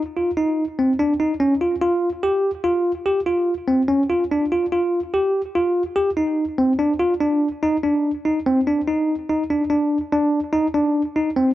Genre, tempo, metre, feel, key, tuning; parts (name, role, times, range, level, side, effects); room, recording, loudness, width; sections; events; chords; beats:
progressive instrumental, progressive; 145 BPM; 7/4; straight; A4 = 440 Hz
bell-like tine electric piano; solo; 0.2-11.5 s; C4 to G4; -18 LUFS; equal; medium stereo tremolo, analog delay
moderate small room reverb, RT60 0.5 s; worn, warbling old tape, cassette tape, warbly pitch drift; -18 LUFS; side -14 dB against mid
0.0-7.2 A section; 7.2-11.5 B section
0.16 0.57 0.99 | 1.40 1.82 2.23 2.65 3.06 3.48 3.89 | 4.30 4.72 5.13 5.55 5.96 6.38 6.79 | 7.21 7.62 8.04 8.45 8.87 9.28 9.70 | 10.11 10.53 10.95 11.36